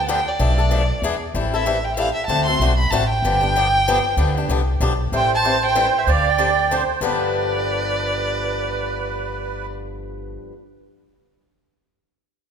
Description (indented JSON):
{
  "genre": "acoustic string swing (jazz manouche)",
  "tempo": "191 BPM",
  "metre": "3/4",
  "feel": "swing 59% on 8ths",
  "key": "G mixolydian",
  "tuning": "A4 = 441 Hz",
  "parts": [
    { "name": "warm violin", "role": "melody", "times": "0.0-9.7 s", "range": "D5 to C6", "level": "-22 LUFS", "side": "right 1 dB", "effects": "none" },
    { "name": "upright bass", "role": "bass", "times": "0.0-10.4 s", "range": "G1 to E2", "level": "-23 LUFS", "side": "equal", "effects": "none" },
    { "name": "picked swing-style acoustic guitar", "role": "accompaniment", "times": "0.1-10.5 s", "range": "G2 to A4", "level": "-24 LUFS", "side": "left 5 dB", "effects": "none" },
    { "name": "musette accordion", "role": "second line", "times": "5.1-9.7 s", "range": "B4 to D5", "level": "-22 LUFS", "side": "right 8 dB", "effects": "none" }
  ],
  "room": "moderate scoring stage reverb, RT60 2.0 s",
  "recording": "recorded in a church or concert hall",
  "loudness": "-17 LUFS",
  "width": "side -7 dB against mid",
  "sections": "0.0-5.1 A section; 5.1-7.0 B section; 7.0-8.9 C section",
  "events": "none",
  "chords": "0.4 Bm7b5; 1.0 E7; 1.3 Am7; 2.3 D7; 3.2 G7; 5.1 Am7; 6.1 D7sus4; 7.0 G7",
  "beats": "0.09 | 0.40 0.72 1.03 | 1.35 1.66 1.98 | 2.29 2.61 2.92 | 3.23 3.55 3.87 | 4.18 4.50 4.81 | 5.12 5.44 5.75 | 6.07 6.38 6.70 | 7.01 7.33 7.64 | 7.96 8.27 8.59"
}